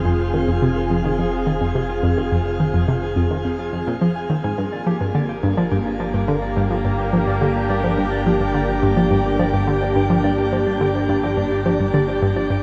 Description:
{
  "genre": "ambient, sequencer-driven space music",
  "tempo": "106 BPM",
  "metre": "4/4",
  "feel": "straight",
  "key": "G phrygian",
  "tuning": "A4 = 439 Hz",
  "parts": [
    { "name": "sweeping resonant pad", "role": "sustained chords", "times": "0.0-12.6 s", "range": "Bb3 to Ab4", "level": "-24 LUFS", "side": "equal", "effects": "chorus" },
    { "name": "fat analog bass", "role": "bass", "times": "0.0-12.6 s", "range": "F1 to G1", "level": "-29 LUFS", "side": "equal", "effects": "none" },
    { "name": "mellow electric guitar", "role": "arpeggios", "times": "0.1-12.6 s", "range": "F4 to Ab5", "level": "-33 LUFS", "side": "equal", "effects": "analog delay" },
    { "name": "analog pluck", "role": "riff", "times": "0.1-12.6 s", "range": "F2 to F3", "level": "-23 LUFS", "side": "equal", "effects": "chorus, analog delay" }
  ],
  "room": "wet shimmer reverb, RT60 7.4 s",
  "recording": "none",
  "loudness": "-20 LUFS",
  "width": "mono",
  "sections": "0.0-12.6 A section",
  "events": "fade-in on clean electric guitar 0.0-12.6; filter sweep on synth arpeggio sound 0.0-12.6",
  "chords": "0.0 Fm; 4.6 Gm",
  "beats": "| 0.05 0.62 1.19 1.75 | 2.32 2.88 3.45 4.02 | 4.58 5.15 5.71 6.28 | 6.85 7.41 7.98 8.54 | 9.11 9.68 10.24 10.81 | 11.38 11.94 12.51"
}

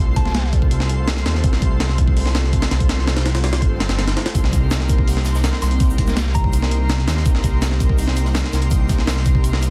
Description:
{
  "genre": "drum and bass, jungle",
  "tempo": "165 BPM",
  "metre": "4/4",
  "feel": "straight",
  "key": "C dorian",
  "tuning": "A4 = 437 Hz",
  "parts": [
    { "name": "soft synth bell", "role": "melody", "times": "0.0-0.4, 5.6-6.9 s", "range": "A5 to C6", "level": "-36 LUFS", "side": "equal", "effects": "chorus, phaser, dub echo" },
    { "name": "airy breathy pad", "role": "sustained chords", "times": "0.0-9.7 s", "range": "A3 to C5", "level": "-31 LUFS", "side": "equal", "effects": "chorus" },
    { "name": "dark detuned saw bass", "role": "bass", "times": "0.0-9.7 s", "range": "G1 to Eb2", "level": "-21 LUFS", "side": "equal", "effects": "tube saturation" },
    { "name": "twinkling granular texture", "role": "texture", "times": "0.0-9.7 s", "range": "C6", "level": "-37 LUFS", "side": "equal", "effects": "built-in reverb" },
    { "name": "breakbeat sampler-style drum kit", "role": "drums", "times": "0.2-9.7 s", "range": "hi-hat, kick drum, snare drum", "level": "-21 LUFS", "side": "equal", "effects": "studio reverb" },
    { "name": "swell", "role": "sound effects", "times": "3.7-4.3 s", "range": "none", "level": "-39 LUFS", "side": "equal", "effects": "none" },
    { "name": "compact cocktail drum kit", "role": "drums", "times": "4.3-9.7 s", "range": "hi-hat, shaker, snare drum", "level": "-38 LUFS", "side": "equal", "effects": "high-pass filter on hats, studio reverb, high-pass filter on snare, high-pass filter on perc, high-pass filter on room" }
  ],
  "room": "little or no reverb",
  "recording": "dense, heavily limited modern master, vinyl crackle",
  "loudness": "-18 LUFS",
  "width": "mono",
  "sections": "0.0-9.7 A section",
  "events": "none",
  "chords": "0.0 F/C; 4.3 Cm7",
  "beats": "0.35 0.71 1.08 | 1.44 1.80 2.17 2.53 | 2.89 3.26 3.62 3.98 | 4.35 4.71 5.08 5.44 | 5.80 6.17 6.53 6.89 | 7.26 7.62 7.99 8.35 | 8.71 9.08 9.44"
}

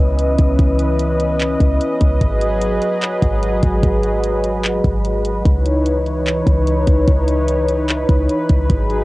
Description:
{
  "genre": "hip hop, atmospheric cloud-rap",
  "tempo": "148 BPM",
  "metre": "4/4",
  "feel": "half-time",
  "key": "C# minor",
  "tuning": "A4 = 437 Hz",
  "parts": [
    { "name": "warm analog pad", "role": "sustained chords", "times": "0.0-9.0 s", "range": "E3 to D#5", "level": "-18 LUFS", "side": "equal", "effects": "chorus, sidechain pumping, cassette tape" },
    { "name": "clean 808-style bass", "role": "bass", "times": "0.0-9.0 s", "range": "G#1 to C#2", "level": "-18 LUFS", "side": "equal", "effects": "none" },
    { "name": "wind-like tuned noise texture", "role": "texture", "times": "0.0-9.0 s", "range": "E3 to D#5", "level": "-28 LUFS", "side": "equal", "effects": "built-in reverb, cassette tape, plate reverb" },
    { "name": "smooth R&B drum kit", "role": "drums", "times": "0.2-9.0 s", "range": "handclaps, hi-hat, kick drum", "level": "-18 LUFS", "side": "equal", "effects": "cassette tape" }
  ],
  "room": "light reverb",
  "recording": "home recording on cassette, nothing above 11.0 kHz",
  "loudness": "-14 LUFS",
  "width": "side -19 dB against mid",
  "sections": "0.0-9.0 A section",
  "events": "none",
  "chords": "0.0 C#m9; 2.2 G#m7; 5.5 C#m9",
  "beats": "0.18 | 0.59 0.99 1.40 1.81 | 2.21 2.62 3.02 3.43 | 3.83 4.24 4.64 5.05 | 5.46 5.86 6.26 6.67 | 7.08 7.48 7.89 8.29 | 8.70"
}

